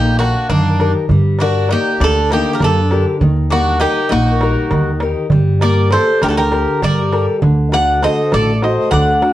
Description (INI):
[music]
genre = greek folk, Greek bouzouki band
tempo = 199 BPM (eighths)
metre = 7/8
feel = straight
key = unclear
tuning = A4 = 440 Hz
[part]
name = Greek bouzouki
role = melody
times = 0.0-9.3 s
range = D4 to F#5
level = -17 LUFS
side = right 2 dB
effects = none
[part]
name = Greek bouzouki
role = second line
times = 0.0-9.3 s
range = Bb3 to D5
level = -23 LUFS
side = left 3 dB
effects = none
[part]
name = fingerpicked acoustic archtop guitar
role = accompaniment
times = 0.0-9.3 s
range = D3 to D5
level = -18 LUFS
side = left 3 dB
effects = none
[part]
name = upright bass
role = bass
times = 0.0-9.3 s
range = A1 to G2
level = -17 LUFS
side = equal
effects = none
[part]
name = darbuka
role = percussion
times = 0.1-9.3 s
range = none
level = -18 LUFS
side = right 2 dB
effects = none
[sound]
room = moderate studio reverb, RT60 0.6 s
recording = worn, warbling old tape, cassette tape, warbly pitch drift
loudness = -12 LUFS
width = side -14 dB against mid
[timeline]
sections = 0.0-9.3 A section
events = none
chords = 0.0 Eb; 1.1 Gm; 3.2 Eb; 5.3 Gmadd9; 7.4 D